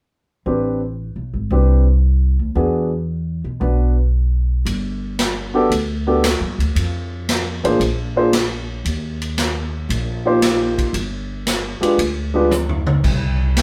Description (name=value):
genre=jazz, big band swing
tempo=115 BPM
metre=4/4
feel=swing 69% on 8ths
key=unclear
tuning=A4 = 440 Hz
part: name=warm grand piano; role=accompaniment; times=0.5-12.5 s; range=Ab3 to C5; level=-20 LUFS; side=equal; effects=none
part: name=upright bass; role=bass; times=0.5-13.6 s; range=G1 to B2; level=-22 LUFS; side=equal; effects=none
part: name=swinging big-band drum kit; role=drums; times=4.7-13.6 s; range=crash cymbal, hi-hat, kick drum, ride cymbal, snare drum, toms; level=-24 LUFS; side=equal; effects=none
room=moderate studio reverb, RT60 0.6 s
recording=band playing live in one room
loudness=-19 LUFS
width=mono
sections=0.5-4.7 A section; 4.7-13.6 B section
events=drum fill 12.5-13.0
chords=0.5 Am11; 2.6 E9; 4.7 Gmaj9; 6.8 Fm; 7.8 Bb9; 8.9 Eb69; 10.9 G7b9; 13.0 N.C.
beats=| 0.47 0.99 1.52 2.04 | 2.57 3.09 3.62 4.14 | 4.67 5.19 5.71 6.24 | 6.76 7.28 7.81 8.33 | 8.85 9.38 9.90 10.43 | 10.95 11.47 11.99 12.52 | 13.04 13.56